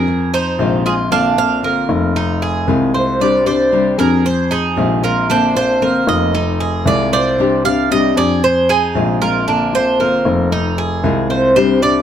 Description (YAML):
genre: latin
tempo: 115 BPM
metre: 4/4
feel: straight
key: unclear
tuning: A4 = 440 Hz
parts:
  - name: Cuban tres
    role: melody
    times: 0.0-12.0 s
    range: Ab4 to F5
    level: -17 LUFS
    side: right 3 dB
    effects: none
  - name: nylon-string guitar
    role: accompaniment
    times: 0.0-12.0 s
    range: C3 to G4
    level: -18 LUFS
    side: left 5 dB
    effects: none
  - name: Cuban tres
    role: arpeggios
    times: 0.0-12.0 s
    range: D4 to D5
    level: -20 LUFS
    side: right 2 dB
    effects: none
  - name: dark baby grand piano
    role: bass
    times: 0.0-12.0 s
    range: F1 to F2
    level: -18 LUFS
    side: left 1 dB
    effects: none
room: moderate studio ambience, RT60 0.5 s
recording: none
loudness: -12 LUFS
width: side -9 dB against mid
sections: 0.0-11.6 A section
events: none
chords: 0.1 Fm7; 1.1 Bbadd9; 2.2 Fm7; 3.2 Csus2; 4.3 Fm7; 5.3 Bbadd9; 6.3 Fm7; 7.4 Csus2; 8.4 Fm7; 9.5 Bbadd9; 10.5 Fm7